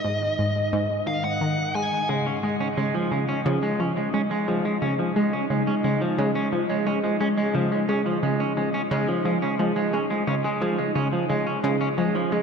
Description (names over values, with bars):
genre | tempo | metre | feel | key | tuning
ambient, sequencer-driven space music | 88 BPM | 4/4 | straight | unclear | A4 = 440 Hz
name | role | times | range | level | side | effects
bluesy overdriven lead guitar | melody | 0.0-2.1 s | D#5 to G#5 | -29 LUFS | equal | distortion, analog delay
analog pluck | riff | 0.0-12.4 s | G#2 to G#3 | -26 LUFS | left 1 dB | chorus, analog delay
wind-like tuned noise texture | texture | 0.0-12.4 s | D#4 to D#5 | -33 LUFS | right 2 dB | built-in reverb
semi-hollow electric guitar | arpeggios | 2.1-12.4 s | E#3 to C#4 | -25 LUFS | right 1 dB | auto-pan, analog delay
room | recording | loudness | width
wet cathedral reverb, RT60 5.8 s | in a vast, echoing space | -22 LUFS | side -6 dB against mid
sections
0.0-12.4 A section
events
none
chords
0.0 G#5; 2.1 C#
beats
0.05 0.73 1.41 | 2.09 2.77 3.46 4.14 | 4.82 5.50 6.18 6.87 | 7.55 8.23 8.91 9.59 | 10.28 10.96 11.64 12.32